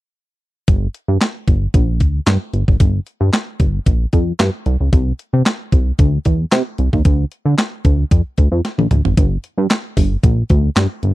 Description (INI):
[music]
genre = early-eighties boogie funk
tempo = 113 BPM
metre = 4/4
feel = straight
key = G dorian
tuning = A4 = 436 Hz
[part]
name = chorused synth bass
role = bass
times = 0.7-11.1 s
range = G1 to D3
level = -15 LUFS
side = equal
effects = none
[part]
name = crisp 8-bit digital drum machine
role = drums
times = 0.7-11.1 s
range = handclaps, hi-hat, kick drum, snare drum, toms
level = -15 LUFS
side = equal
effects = none
[sound]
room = little or no reverb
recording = dry, close 1970s-style studio recording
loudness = -14 LUFS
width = side -17 dB against mid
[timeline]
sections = 0.7-9.2 A section; 9.2-11.1 B section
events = drum fill 8.6-9.2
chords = none